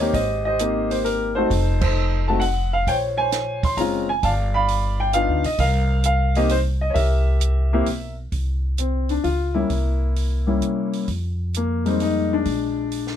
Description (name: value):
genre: jazz piano trio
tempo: 132 BPM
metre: 3/4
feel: swing 68% on 8ths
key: unclear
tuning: A4 = 441 Hz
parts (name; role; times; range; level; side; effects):
- warm upright piano; melody; 0.0-13.2 s; G3 to C6; -21 LUFS; left 2 dB; none
- upright bass; bass; 0.0-13.2 s; F1 to C3; -22 LUFS; equal; none
- compact cocktail drum kit; drums; 0.1-13.2 s; crash cymbal, hi-hat, kick drum, snare drum; -29 LUFS; right 3 dB; none
room: little or no reverb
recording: none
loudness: -19 LUFS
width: side -10 dB against mid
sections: 0.0-8.3 A section; 8.3-13.2 B section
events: band accent 1.7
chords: 0.1 Abmaj7; 1.5 F7b9; 2.9 Bbm9; 4.2 G7b13; 5.6 Cm7; 7.0 C7; 8.3 C7b9; 11.1 Fm11; 12.5 Bb7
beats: | 0.14 0.59 1.05 | 1.50 1.96 2.41 | 2.87 3.32 3.77 | 4.23 4.68 5.14 | 5.59 6.04 6.50 | 6.96 7.41 7.87 | 8.32 8.78 9.24 | 9.70 10.16 10.62 | 11.08 11.54 12.00 | 12.46 12.92